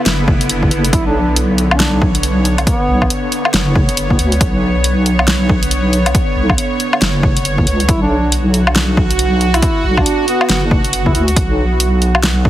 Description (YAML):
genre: deep dubstep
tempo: 138 BPM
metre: 4/4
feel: swing 61% on 16ths, half-time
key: B minor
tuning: A4 = 440 Hz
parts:
  - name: bowed-like drone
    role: sustained chords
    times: 0.0-12.5 s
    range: D3 to C#5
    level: -19 LUFS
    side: right 1 dB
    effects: built-in reverb
  - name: deep soft wobble bass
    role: bass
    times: 0.1-12.5 s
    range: F#1 to D2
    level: -15 LUFS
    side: equal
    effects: chorus
  - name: deep house drum kit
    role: drums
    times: 0.1-12.3 s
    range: hi-hat, snare drum, woodblock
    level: -17 LUFS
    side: equal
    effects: overdrive
  - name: electronic kick drum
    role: drums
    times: 0.3-12.5 s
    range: none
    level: -16 LUFS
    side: equal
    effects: overdrive
  - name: breathy duduk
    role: melody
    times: 0.9-3.1, 7.9-11.2 s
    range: B3 to E4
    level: -22 LUFS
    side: equal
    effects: dub echo
room: digital ambience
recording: heavily compressed radio sound, multiband compression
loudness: -11 LUFS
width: side -13 dB against mid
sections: 0.0-12.5 A section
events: none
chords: 0.0 Bmadd9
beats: 0.06 0.49 | 0.93 1.36 1.80 2.23 | 2.67 3.10 3.54 3.97 | 4.41 4.84 5.28 5.71 | 6.15 6.58 7.02 7.45 | 7.89 8.32 8.76 9.19 | 9.62 10.06 10.49 10.93 | 11.36 11.80 12.23